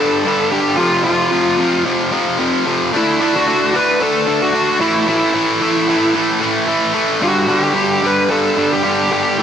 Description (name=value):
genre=rock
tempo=112 BPM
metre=4/4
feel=straight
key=unclear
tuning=A4 = 440 Hz
part: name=bluesy overdriven lead guitar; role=melody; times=0.0-9.4 s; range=E4 to B4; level=-17 LUFS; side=equal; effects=distortion
part: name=distorted electric guitar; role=riff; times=0.0-9.4 s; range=F2 to D4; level=-15 LUFS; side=equal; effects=overdrive
room=wet lush hall reverb, RT60 2.1 s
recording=big arena sound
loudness=-13 LUFS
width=side -8 dB against mid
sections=0.0-9.4 A section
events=none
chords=0.0 G5; 0.8 F5; 2.9 D5; 4.8 A5; 7.2 G5